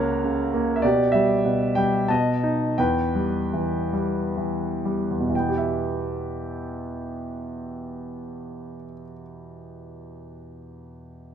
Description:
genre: classical, lyrical solo piano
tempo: 59-101 BPM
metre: 3/4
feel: rubato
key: E minor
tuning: A4 = 440 Hz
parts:
  - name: clear concert grand piano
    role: solo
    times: 0.0-11.3 s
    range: C#2 to A5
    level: -23 LUFS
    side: equal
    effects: none
room: moderate recital hall reverb, RT60 1.4 s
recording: close, detailed microphones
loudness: -22 LUFS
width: side -8 dB against mid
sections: 0.0-5.3 A section; 5.3-11.3 B section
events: slowing down 0.8-5.3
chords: 0.0 C#6; 0.8 Em/B; 2.1 B7; 2.8 Em

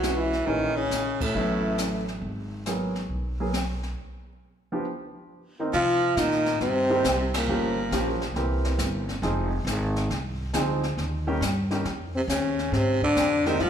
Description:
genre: jazz, small-group swing and bop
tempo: 137 BPM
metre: 4/4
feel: swing 68% on 8ths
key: C minor from 5.7 s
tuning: A4 = 438 Hz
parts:
  - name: breathy trombone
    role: melody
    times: 0.0-2.1, 5.7-8.2, 12.2-13.7 s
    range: A3 to F#4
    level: -25 LUFS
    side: left 2 dB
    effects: none
  - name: growling baritone saxophone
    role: second line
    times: 0.0-2.1, 5.7-8.2, 12.2-13.7 s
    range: A2 to F#3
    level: -29 LUFS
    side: right 4 dB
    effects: none
  - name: clear baby grand piano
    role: accompaniment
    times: 0.0-13.6 s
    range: D#3 to G#4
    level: -30 LUFS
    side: right 1 dB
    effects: none
  - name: upright bass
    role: bass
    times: 0.0-13.7 s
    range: F1 to C3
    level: -30 LUFS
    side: equal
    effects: none
  - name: jazz brush drum kit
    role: drums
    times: 0.0-13.7 s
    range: brushed snare drum, hi-hat, kick drum, ride cymbal, snare drum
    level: -32 LUFS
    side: left 1 dB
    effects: none
room: wet recital hall reverb, RT60 1.8 s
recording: recorded in a church or concert hall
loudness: -24 LUFS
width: side -8 dB against mid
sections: 0.0-5.7 A section; 5.7-13.7 B section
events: band accent 1.1, 7.3; break 4.0-5.7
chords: 0.5 A#m7b5; 1.3 A69; 2.2 G#m9; 4.0 G7; 5.7 Cm7; 7.5 Gm7b5; 8.3 C7; 9.2 Fm7; 11.0 Eb7; 12.7 Abmaj9

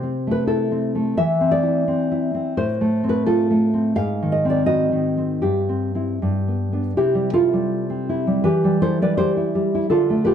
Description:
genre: romantic piece for solo classical guitar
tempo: 77-88 BPM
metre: 2/4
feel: rubato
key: C major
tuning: A4 = 439 Hz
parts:
  - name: nylon-string guitar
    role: solo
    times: 0.0-10.3 s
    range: G2 to F5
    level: -18 LUFS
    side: equal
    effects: none
room: moderate recital hall reverb, RT60 1.4 s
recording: dark, warm production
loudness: -18 LUFS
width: side -8 dB against mid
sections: 0.0-7.0 A section; 7.0-10.3 B section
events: none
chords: 0.0 Am/C; 1.2 C/E; 2.6 F/A; 4.0 Ab7; 5.4 C/G; 6.2 G; 7.0 C; 8.5 C/E

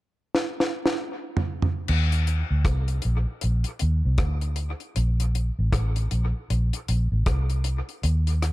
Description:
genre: lovers rock reggae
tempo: 78 BPM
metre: 4/4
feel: swing 60% on 16ths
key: unclear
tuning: A4 = 440 Hz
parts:
  - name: deep reggae drum kit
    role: drums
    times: 0.3-8.5 s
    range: crash cymbal, hi-hat, kick drum, rim click, snare drum, toms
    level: -27 LUFS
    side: equal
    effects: dub echo
  - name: vintage muted fingered electric bass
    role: bass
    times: 1.9-8.5 s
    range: A1 to Eb2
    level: -22 LUFS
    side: equal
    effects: none
room: little or no reverb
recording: dark, warm production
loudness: -22 LUFS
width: side -18 dB against mid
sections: 0.0-1.9 A section; 1.9-8.5 B section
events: drum fill 0.3-1.9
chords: none

